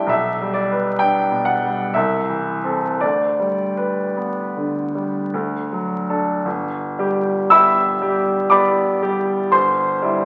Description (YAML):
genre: classical, romantic nocturne for solo piano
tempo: 51-68 BPM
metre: 3/4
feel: rubato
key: G major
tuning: A4 = 440 Hz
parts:
  - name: clear baby grand piano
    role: solo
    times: 0.0-10.2 s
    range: G1 to E6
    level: -19 LUFS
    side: equal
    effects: none
room: wet recital hall reverb, RT60 1.5 s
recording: very old 78 rpm record, vinyl crackle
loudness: -19 LUFS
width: mono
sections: 0.0-6.4 A section; 6.4-10.2 B section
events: none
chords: 0.1 G/B; 2.0 Am/C; 3.0 G/D; 5.3 D; 6.4 G; 9.5 G5